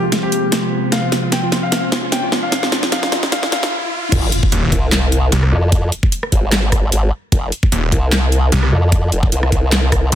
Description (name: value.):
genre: heavy wobble dubstep.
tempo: 150 BPM.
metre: 4/4.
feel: swing 54% on 16ths, half-time.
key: F minor.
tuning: A4 = 440 Hz.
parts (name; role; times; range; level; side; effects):
clear grand piano; melody; 0.0-3.7 s; F4 to G5; -22 LUFS; left 2 dB; ping-pong delay.
lush unison pad; sustained chords; 0.0-3.7 s; C3 to C5; -22 LUFS; equal; chorus, sidechain pumping.
riser and impact; sound effects; 0.3-5.7 s; none; -24 LUFS; equal; none.
dubstep drum kit; drums; 0.1-10.2 s; crash cymbal, handclaps, hi-hat, rim click, snare drum; -19 LUFS; equal; studio ambience.
formant-sweep wobble bass; bass; 4.1-10.1 s; F1 to F2; -15 LUFS; equal; chorus, overdrive.
electronic kick drum; drums; 4.1-10.0 s; none; -16 LUFS; equal; studio ambience.
snarling distorted saw bass; bass; 4.5-10.2 s; Eb1 to C2; -15 LUFS; equal; distortion, overdrive.
room: light reverb, digital ambience.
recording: dense, heavily limited modern master, high-pass filter.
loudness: -14 LUFS.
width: side -10 dB against mid.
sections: 0.0-4.1 A section; 4.1-10.2 B section.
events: build-up 0.0-4.1; drum fill 0.0-3.7; filter sweep on analog synth pad 0.0-4.1; filter sweep 0.0-4.1; riser 0.3-4.1; stop 3.7-4.1; drop 4.1-10.2; impact 4.1-5.7.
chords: 0.0 Fm.